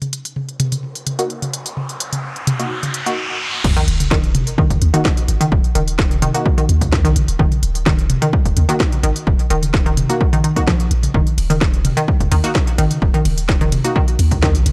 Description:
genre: minimal techno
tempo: 128 BPM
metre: 4/4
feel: straight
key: Eb minor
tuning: A4 = 440 Hz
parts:
  - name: garage drum kit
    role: drums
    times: 0.0-14.7 s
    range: crash cymbal, hi-hat, ride cymbal, snare drum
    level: -26 LUFS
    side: equal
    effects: none
  - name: electronic toms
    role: percussion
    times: 0.0-14.7 s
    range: none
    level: -26 LUFS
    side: equal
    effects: none
  - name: riser and sub drop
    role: sound effects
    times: 1.1-5.5 s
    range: none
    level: -28 LUFS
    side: equal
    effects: none
  - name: filtered dub chord stab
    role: stabs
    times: 1.2-13.9 s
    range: Bb3 to Gb4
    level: -26 LUFS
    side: equal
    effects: chorus, tape echo
  - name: punchy sub bass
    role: bass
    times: 3.6-14.7 s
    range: Eb1 to Eb2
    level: -20 LUFS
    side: equal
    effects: sidechain pumping
  - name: electronic kick drum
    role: drums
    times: 3.6-14.5 s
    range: none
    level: -20 LUFS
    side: equal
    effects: none
  - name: hollow square pluck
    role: riff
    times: 3.8-14.5 s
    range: Eb3 to F3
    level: -23 LUFS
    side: equal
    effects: chorus, sidechain pumping, tape echo
room: digital ambience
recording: dry, gritty hardware recording, transformer saturation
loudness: -17 LUFS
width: mono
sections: 0.0-3.6 A section; 3.6-14.7 B section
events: filter sweep on synth stab 0.0-3.6; riser 1.1-3.6; drop 3.6-14.7; impact 3.6-5.5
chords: 0.0 Ebm; 3.6 Eb5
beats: 0.36 0.83 1.30 | 1.77 2.24 2.71 3.17 | 3.64 4.11 4.58 5.05 | 5.52 5.99 6.46 6.92 | 7.39 7.86 8.33 8.80 | 9.27 9.74 10.21 10.68 | 11.14 11.61 12.08 12.55 | 13.02 13.49 13.96 14.43

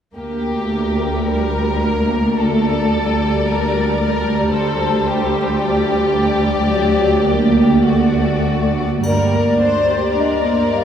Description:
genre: classical, slow romantic movement for symphony orchestra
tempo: 48-56 BPM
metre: 4/4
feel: rubato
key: G minor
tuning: A4 = 442 Hz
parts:
  - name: rich studio violin section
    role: melody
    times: 0.2-10.8 s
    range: Bb4 to D5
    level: -25 LUFS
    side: left 5 dB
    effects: none
  - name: clear studio violin section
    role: second line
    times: 0.2-10.8 s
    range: F#4 to C5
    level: -21 LUFS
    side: left 2 dB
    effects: none
  - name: rich studio viola section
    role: accompaniment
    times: 0.2-10.8 s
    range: F#3 to G4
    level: -20 LUFS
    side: right 1 dB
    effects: none
  - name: warm studio cello section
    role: bass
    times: 0.2-10.0 s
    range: D2 to G2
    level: -19 LUFS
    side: right 2 dB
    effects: none
  - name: mellow hollow silver concert flute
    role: second line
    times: 9.0-10.8 s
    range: D5 to F5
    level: -18 LUFS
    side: left 2 dB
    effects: none
  - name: triangle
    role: percussion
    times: 9.0-10.8 s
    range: none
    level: -40 LUFS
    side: left 3 dB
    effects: none
room: wet cathedral reverb, RT60 6.4 s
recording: heard from further back in the room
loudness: -14 LUFS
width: side -8 dB against mid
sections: 0.2-9.0 A section; 9.0-10.8 B section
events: none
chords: 0.2 Gm/D; 4.5 D7; 9.0 Gm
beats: | 0.17 1.28 2.38 3.46 | 4.53 5.60 6.70 7.84 | 9.04 10.18

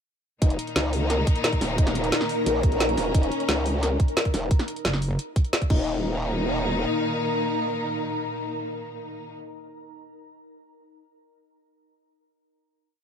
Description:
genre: dark technical drum and bass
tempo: 176 BPM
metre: 4/4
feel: straight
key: unclear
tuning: A4 = 441 Hz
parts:
  - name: clear studio string section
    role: sustained chords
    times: 0.4-9.4 s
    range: Bb2 to Eb4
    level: -31 LUFS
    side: left 2 dB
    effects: sidechain pumping
  - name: felt-muted upright piano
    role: arpeggios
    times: 0.4-6.0 s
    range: Eb4 to Bb4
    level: -31 LUFS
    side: left 5 dB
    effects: sidechain pumping, ping-pong delay
  - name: growl bass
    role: bass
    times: 0.4-6.9 s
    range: Eb1 to Db2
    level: -26 LUFS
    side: right 1 dB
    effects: chorus, tube saturation, sidechain pumping
  - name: drum and bass drum kit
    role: drums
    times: 0.4-5.8 s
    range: crash cymbal, hi-hat, snare drum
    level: -27 LUFS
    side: equal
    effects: none
  - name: electronic kick drum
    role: drums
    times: 0.4-5.8 s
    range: none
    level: -21 LUFS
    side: right 1 dB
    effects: none
  - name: ethereal airy pad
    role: texture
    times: 1.0-9.4 s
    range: Eb4 to Bb5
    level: -30 LUFS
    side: equal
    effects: ensemble chorus, built-in reverb, sidechain pumping
  - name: metallic wobble bass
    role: bass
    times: 4.8-5.2 s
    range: Gb1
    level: -24 LUFS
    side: right 1 dB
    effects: distortion, chorus
room: light reverb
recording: none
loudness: -22 LUFS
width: side -8 dB against mid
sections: 0.4-5.9 drop; 5.9-8.6 final note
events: drop 0.4-5.9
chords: 0.4 Eb5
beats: | 0.42 0.76 1.10 1.44 | 1.78 2.12 2.46 2.80 | 3.15 3.49 3.83 4.17 | 4.51 4.85 5.19 5.53 | 5.87 6.21 6.55 6.89 | 7.24 7.58 7.92 8.26

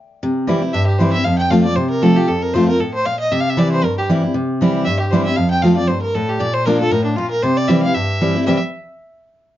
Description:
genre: bluegrass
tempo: 233 BPM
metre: 4/4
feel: swing 56% on 8ths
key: C mixolydian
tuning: A4 = 440 Hz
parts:
  - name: picked steel-string acoustic guitar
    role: accompaniment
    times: 0.2-8.6 s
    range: F2 to F4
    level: -15 LUFS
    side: equal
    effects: none
  - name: clear fiddle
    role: melody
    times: 0.7-8.6 s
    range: D4 to G5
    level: -20 LUFS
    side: equal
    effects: none
room: moderate studio reverb, RT60 0.6 s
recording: dark, warm production, nothing above 7.4 kHz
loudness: -14 LUFS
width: side -13 dB against mid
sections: 0.2-8.5 A section; 8.5-9.5 B section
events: none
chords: 0.2 C; 1.2 F; 3.3 C; 5.4 F; 6.4 Bb; 7.4 C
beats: | 0.22 0.47 0.73 0.99 | 1.25 1.51 1.76 2.02 | 2.28 2.54 2.80 3.06 | 3.31 3.57 3.83 4.09 | 4.35 4.60 4.86 5.12 | 5.38 5.63 5.89 6.15 | 6.41 6.67 6.92 7.18 | 7.44 7.69 7.95 8.21 | 8.46

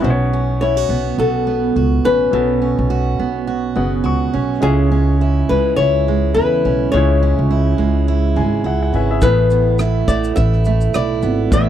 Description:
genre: acoustic pop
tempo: 104 BPM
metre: 4/4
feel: swing 55% on 16ths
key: unclear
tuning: A4 = 441 Hz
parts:
  - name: clear baby grand piano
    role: accompaniment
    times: 0.0-11.7 s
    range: G#3 to C#6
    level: -26 LUFS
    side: left 7 dB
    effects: none
  - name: picked steel-string acoustic guitar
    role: accompaniment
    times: 0.0-11.7 s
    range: A2 to F#4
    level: -19 LUFS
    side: right 8 dB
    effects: none
  - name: upright bass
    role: bass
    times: 0.0-11.7 s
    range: F#1 to E2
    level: -17 LUFS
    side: equal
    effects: none
  - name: flamenco guitar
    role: melody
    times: 0.6-11.7 s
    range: G#4 to E5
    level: -18 LUFS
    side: left 4 dB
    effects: none
  - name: natural country drum kit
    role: drums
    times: 9.2-11.7 s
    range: kick drum, rim click, shaker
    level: -18 LUFS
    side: equal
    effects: none
room: little or no reverb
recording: dry, close 1970s-style studio recording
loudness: -14 LUFS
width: side -10 dB against mid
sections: 0.0-11.7 A section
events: grand piano fill 3.5-4.6, 8.1-9.2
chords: 0.0 Bsus2; 4.6 C#m; 9.2 Asus2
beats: | 0.03 0.60 1.18 1.75 | 2.33 2.90 3.48 4.05 | 4.63 5.20 5.78 6.35 | 6.93 7.50 8.08 8.65 | 9.22 9.80 10.37 10.95 | 11.52

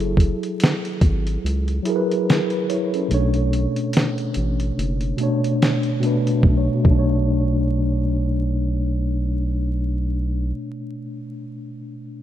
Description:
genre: lo-fi hip hop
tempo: 72 BPM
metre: 4/4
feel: swing 58% on 16ths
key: B dorian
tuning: A4 = 439 Hz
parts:
  - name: mellow tine electric piano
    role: accompaniment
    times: 0.0-12.2 s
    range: B2 to C#5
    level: -22 LUFS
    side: equal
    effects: medium stereo tremolo, low-pass filter
  - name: round analog bass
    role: bass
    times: 0.0-10.5 s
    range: F#1 to C#2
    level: -22 LUFS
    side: equal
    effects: none
  - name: dusty soul sampler-style drum kit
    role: drums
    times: 0.0-7.1 s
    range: hi-hat, kick drum, snare drum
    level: -19 LUFS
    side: equal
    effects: vintage 12-bit sampler grit
room: little or no reverb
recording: rough home demo mix, vinyl crackle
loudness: -18 LUFS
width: side -12 dB against mid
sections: 0.0-6.4 A section; 6.4-9.8 B section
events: kick muted 3.1-6.4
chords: 0.0 F#m9; 3.1 Bm9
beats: 0.60 1.43 2.27 | 3.10 3.93 4.76 5.60 | 6.43 7.26 8.10 8.93

